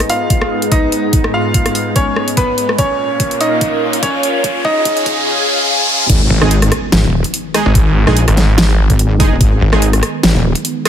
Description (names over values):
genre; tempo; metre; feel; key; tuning
heavy wobble dubstep; 145 BPM; 4/4; swing 55% on 16ths, half-time; G# dorian; A4 = 441 Hz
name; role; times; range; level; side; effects
bright concert grand piano; melody; 0.0-5.2 s; B3 to E#5; -17 LUFS; right 1 dB; digital delay
lush unison pad; sustained chords; 0.0-10.9 s; G#2 to G#4; -20 LUFS; equal; chorus, phaser, sidechain pumping
dubstep drum kit; drums; 0.0-10.9 s; crash cymbal, hi-hat, rim click, snare drum; -17 LUFS; equal; overdrive
riser and impact; sound effects; 2.9-7.8 s; none; -20 LUFS; equal; none
electronic kick drum; drums; 0.3-9.5 s; none; -14 LUFS; equal; overdrive
wobble bass; bass; 6.1-10.5 s; D#1 to A#1; -13 LUFS; equal; chorus, overdrive
snarling distorted saw bass; bass; 6.3-10.3 s; G#1; -12 LUFS; equal; distortion, overdrive
supersaw stab; stabs; 6.4-10.9 s; G#3 to G#4; -20 LUFS; right 4 dB; vintage 12-bit sampler grit, digital delay
room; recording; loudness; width
light reverb; high-pass filter; -11 LUFS; side -9 dB against mid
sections
0.0-6.1 A section; 6.1-10.9 B section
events
build-up 0.0-6.1; filter sweep 0.0-6.1; drum fill 2.8-5.3; riser 2.9-6.1; drop 6.1-10.9; impact 6.1-7.8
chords
0.0 G#m; 2.8 A#m; 4.4 C#; 6.1 G#m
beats
0.30 0.72 | 1.13 1.54 1.96 2.37 | 2.79 3.20 3.61 4.03 | 4.44 4.86 5.27 5.68 | 6.10 6.51 6.92 7.34 | 7.75 8.16 8.58 8.99 | 9.41 9.82 10.23 10.65